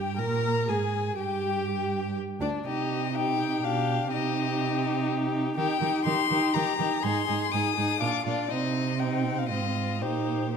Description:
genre	quick classical-period movement for string quartet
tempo	122 BPM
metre	3/4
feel	rubato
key	C minor, Eb major from 5.6 s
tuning	A4 = 440 Hz
part	warm violin	melody	0.0-10.6 s	C5 to Eb6	-31 LUFS	left 10 dB	none
part	warm violin	second line	0.0-10.6 s	D4 to Bb4	-31 LUFS	left 5 dB	none
part	warm viola	accompaniment	0.0-10.6 s	C4 to Bb4	-31 LUFS	right 3 dB	none
part	dark cello	bass	0.0-10.6 s	D2 to Eb3	-31 LUFS	right 5 dB	none
room	wet recital hall reverb, RT60 1.7 s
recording	none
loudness	-25 LUFS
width	side -6 dB against mid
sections	0.0-10.6 A section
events	none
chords	0.0 Gm; 0.7 N.C.; 1.2 G5; 2.7 Cm; 3.6 G/B; 4.1 Cm; 5.6 Eb; 7.0 Ab; 8.0 Bb; 8.5 Cm; 9.5 Fm7/Ab; 10.0 Eb/Bb

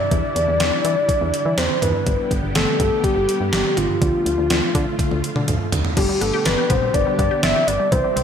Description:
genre	synth-pop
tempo	123 BPM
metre	4/4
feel	straight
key	unclear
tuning	A4 = 436 Hz
part	soft octave-layered synth lead	melody	0.0-8.2 s	F4 to E5	-20 LUFS	left 2 dB	chorus, digital delay
part	string machine, cellos	sustained chords	0.0-8.2 s	D3 to G4	-27 LUFS	equal	ensemble chorus
part	solid FM bass	bass	0.1-8.2 s	G1 to E3	-24 LUFS	equal	none
part	gated 80s digital drum machine	drums	0.1-8.2 s	crash cymbal, hi-hat, kick drum, snare drum, toms	-22 LUFS	right 1 dB	gated reverb, gated reverb snare, overdrive
part	resonant blip pluck	arpeggios	6.0-8.2 s	D3 to D5	-27 LUFS	left 2 dB	chorus, digital delay
room	moderate lush hall reverb, RT60 2.2 s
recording	bright 1980s-style digital production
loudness	-17 LUFS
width	side -8 dB against mid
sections	0.0-6.0 A section; 6.0-8.2 B section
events	drum fill 5.0-6.0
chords	0.1 Em7; 2.1 G; 4.0 Dm; 6.0 G

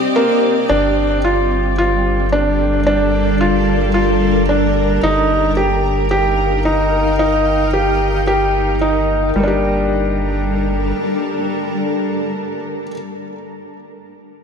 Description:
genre	piano and strings electronica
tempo	111 BPM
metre	4/4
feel	straight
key	G minor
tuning	A4 = 440 Hz
part	granular cloud pad	sustained chords	0.0-13.1 s	G3 to G5	-19 LUFS	left 1 dB	built-in reverb
part	felt-muted upright piano	riff	0.2-12.9 s	G3 to G4	-17 LUFS	equal	ping-pong delay
part	round analog bass	bass	0.7-10.9 s	G1	-20 LUFS	equal	none
room	moderate lush hall reverb, RT60 2.1 s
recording	none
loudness	-14 LUFS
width	side -6 dB against mid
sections	0.7-9.3 A section; 9.3-13.7 B section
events	break 0.0-0.7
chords	0.0 Cm7; 0.7 Gm7; 5.0 Eb/G; 9.3 Gm

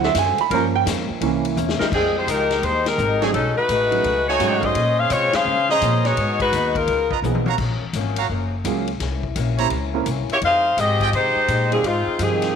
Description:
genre	jazz, big band swing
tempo	169 BPM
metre	4/4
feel	swing 65% on 8ths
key	F minor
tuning	A4 = 439 Hz
part	picked old ladder-braced acoustic guitar	accompaniment	0.0-12.4 s	Gb2 to C5	-29 LUFS	left 12 dB	none
part	warm baby grand piano	accompaniment	0.0-11.8 s	E3 to B5	-23 LUFS	right 12 dB	none
part	bright saxophone section	sustained chords	0.0-1.9 s	F#3 to Bb4	-28 LUFS	left 2 dB	none
part	upright bass	bass	0.0-12.5 s	Gb1 to Db3	-25 LUFS	left 1 dB	none
part	swinging big-band drum kit	drums	0.0-12.5 s	crash cymbal, hi-hat, kick drum, ride cymbal, snare drum, toms	-29 LUFS	left 6 dB	none
part	bright saxophone section	melody	1.9-7.1, 10.3-12.6 s	Eb3 to F5	-19 LUFS	left 2 dB	none
part	bright trumpet section	stabs	1.9-11.1 s	Db4 to Bb5	-27 LUFS	right 10 dB	none
part	dark trombone section	second line	12.2-12.6 s	C3 to F3	-24 LUFS	right 12 dB	none
room	moderate plate reverb, RT60 1.5 s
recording	1960s-style stereo with parts hard left and right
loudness	-18 LUFS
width	side -7 dB against mid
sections	0.0-1.9 A section; 1.9-12.6 B section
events	grand piano solo 0.0-1.9; drum fill 1.6-1.9, 7.2-7.6; band accent 2.8, 5.3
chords	0.0 D7; 0.5 Gm7b5; 1.2 C7b9; 1.9 Fm9; 3.3 B13; 4.7 Bbm9; 6.2 Abm7; 6.9 Db13; 7.6 Gbmaj7; 9.0 C7b9; 10.4 Fm9

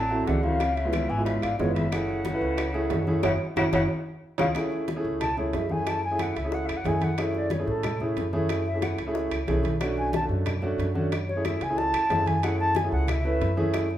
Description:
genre	Afro-Cuban jazz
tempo	183 BPM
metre	4/4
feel	straight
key	F# minor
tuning	A4 = 441 Hz
part	reedy silver concert flute	melody	0.0-13.7 s	A4 to A5	-30 LUFS	left 1 dB	none
part	bright tenor saxophone	second line	0.0-4.5 s	G#2 to F#3	-35 LUFS	left 3 dB	none
part	upright bass	bass	0.0-14.0 s	F#1 to A2	-30 LUFS	equal	none
part	warm concert grand piano	accompaniment	0.1-13.9 s	G#3 to B4	-28 LUFS	right 1 dB	none
part	bongos	percussion	0.1-14.0 s	none	-36 LUFS	left 5 dB	none
part	congas	percussion	0.1-14.0 s	none	-33 LUFS	equal	none
part	timbales	percussion	0.3-13.9 s	none	-34 LUFS	right 5 dB	none
part	claves	percussion	0.6-13.9 s	none	-41 LUFS	left 3 dB	none
room	moderate large studio reverb, RT60 1.0 s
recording	band playing live in one room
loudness	-24 LUFS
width	side -12 dB against mid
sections	0.0-4.6 A section; 4.6-14.0 B section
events	drum fill 3.2-4.6; band accent 3.2-4.6; flute solo 4.6-14.0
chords	0.0 D7; 0.6 C#7#9; 1.9 F#m7; 3.9 C#; 4.6 F#m7; 9.8 Bm7; 11.1 F#m7

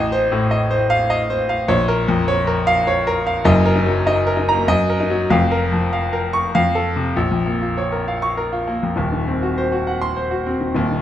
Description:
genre	classical, virtuoso piano study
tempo	100 BPM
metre	3/4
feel	rubato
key	Bb minor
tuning	A4 = 440 Hz
part	clear grand piano	solo	0.0-11.0 s	Eb1 to Db6	-16 LUFS	equal	none
room	wet recital hall reverb, RT60 1.4 s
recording	minimal, uncompressed stereo recording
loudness	-16 LUFS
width	side -11 dB against mid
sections	0.0-7.2 A section; 7.2-11.0 B section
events	none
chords	0.0 F7/A; 1.7 Bbm; 3.5 Ebm/Gb; 5.3 Bbm/F; 6.5 F; 7.2 Bbm; 9.0 Cdim/Eb

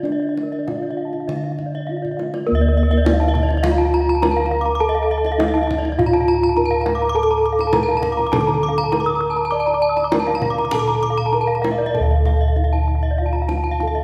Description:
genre	Balinese gamelan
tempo	101 BPM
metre	4/4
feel	straight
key	D pelog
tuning	A4 = 441 Hz
part	gamelan-type bronze metallophone	melody	0.0-14.0 s	Bb3 to D5	-24 LUFS	equal	none
part	gamelan-type bronze metallophone	arpeggios	0.0-13.9 s	Bb4 to Eb6+35c	-26 LUFS	equal	none
part	gamelan-type bossed gongs	bass	0.0-14.0 s	D2 to D5	-24 LUFS	equal	none
part	gamelan-type bronze metallophone	arpeggios	0.1-14.0 s	D5 to D6	-28 LUFS	equal	none
part	kendang	percussion	0.1-13.9 s	none	-29 LUFS	equal	none
room	wet scoring stage reverb, RT60 1.7 s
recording	recorded in a church or concert hall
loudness	-19 LUFS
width	mono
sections	0.0-2.5 A section; 2.5-12.0 B section; 12.0-14.0 C section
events	drum fill 2.0-2.5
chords	none

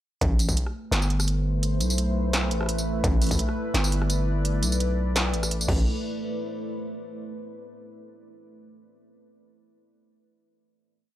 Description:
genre	half-time drum and bass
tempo	170 BPM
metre	4/4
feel	swing 54% on 16ths, half-time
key	A minor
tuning	A4 = 440 Hz
part	deep dark ambient pad	sustained chords	0.7-7.2 s	A3 to D5	-32 LUFS	left 1 dB	chorus, built-in reverb, sidechain pumping
part	growling 808-style bass	bass	0.2-5.8 s	G1 to B1	-24 LUFS	equal	none
part	electronic kick drum	drums	0.2-0.6, 3.0-3.4, 5.7-5.8 s	none	-25 LUFS	equal	distortion, studio reverb
part	industrial drum kit	drums	0.2-5.8 s	crash cymbal, hi-hat, rim click, snare drum, tambourine	-28 LUFS	equal	studio reverb
room	digital ambience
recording	dry, gritty hardware recording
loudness	-23 LUFS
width	side -13 dB against mid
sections	0.2-5.9 drop; 5.9-7.3 final chord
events	drop 0.2-5.9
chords	0.2 Am; 5.7 A5; 5.9 Am

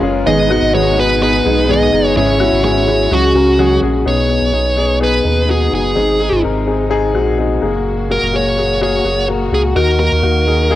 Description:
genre	pop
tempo	126 BPM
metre	4/4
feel	straight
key	unclear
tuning	A4 = 440 Hz
part	warm grand piano	accompaniment	0.0-10.8 s	G#2 to B4	-16 LUFS	left 5 dB	cassette tape
part	warm studio string section	sustained chords	0.0-10.8 s	A#2 to F#4	-25 LUFS	equal	cassette tape
part	fingerpicked steel-string acoustic guitar	riff	0.0-4.1 s	G#2 to G#4	-19 LUFS	right 6 dB	cassette tape
part	round analog bass	bass	0.0-10.8 s	F#1 to D#2	-18 LUFS	right 1 dB	none
part	dark smooth lead guitar	melody	0.3-10.8 s	F#4 to D#5	-15 LUFS	right 1 dB	overdrive, cassette tape
room	light reverb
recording	home recording on cassette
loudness	-11 LUFS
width	side -14 dB against mid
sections	0.0-4.1 A section; 4.1-10.8 B section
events	none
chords	0.3 G#m; 2.2 E6/G#; 3.1 C#sus4; 4.1 B6; 6.0 G#; 7.6 F#add9; 9.8 D#m

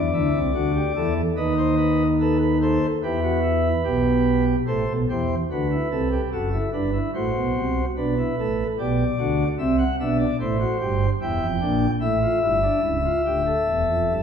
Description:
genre	classical, baroque-style 3-part fugue for pipe organ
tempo	73 BPM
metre	4/4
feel	straight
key	A minor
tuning	A4 = 440 Hz
part	pipe organ, sparkling flutes	solo	0.0-14.2 s	C#1 to G5	-20 LUFS	equal	none
room	wet recital hall reverb, RT60 1.2 s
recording	heard from further back in the room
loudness	-20 LUFS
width	side -7 dB against mid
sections	0.0-4.7 A section; 4.7-14.2 B section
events	none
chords	0.0 D; 1.4 B7/D#; 3.0 Em; 4.7 Am; 6.3 D7/F#; 8.0 G; 9.6 Cmaj7; 11.2 Edim; 12.8 A7/C#

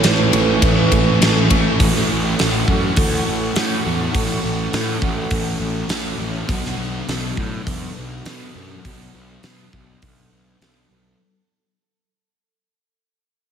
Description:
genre	rock, shoegaze and dream pop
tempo	102 BPM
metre	4/4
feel	straight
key	A major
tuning	A4 = 445 Hz
part	warm velvety synth lead	melody	0.0-1.2 s	C#5	-32 LUFS	equal	none
part	airy breathy pad	sustained chords	0.0-6.5 s	A4 to C#6	-27 LUFS	equal	chorus
part	picked twelve-string acoustic guitar	arpeggios	0.0-11.5 s	F#4 to B4	-29 LUFS	right 8 dB	analog chorus, tape echo
part	cranked stack guitar	riff	0.0-1.8 s	A2 to A3	-25 LUFS	right 4 dB	none
part	crunchy overdriven guitar	riff	0.0-11.2 s	A2 to E4	-26 LUFS	right 9 dB	reverse reverb
part	thick fuzz guitar	riff	0.0-11.2 s	A2 to B3	-25 LUFS	left 8 dB	distortion, wide subtle chorus
part	fuzz picked electric bass	bass	0.0-11.1 s	A1 to B2	-22 LUFS	equal	overdrive
part	big rock drum kit	drums	0.0-10.8 s	hi-hat, kick drum, ride cymbal, snare drum	-20 LUFS	equal	none
room	moderate plate reverb, RT60 1.8 s, small room reverb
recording	dreamy mix soaked in reverb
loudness	-16 LUFS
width	side -8 dB against mid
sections	0.0-1.8 A section; 1.8-11.2 B section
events	fade-out 1.8-11.2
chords	0.0 Amaj7; 1.8 A6; 6.5 Bm7

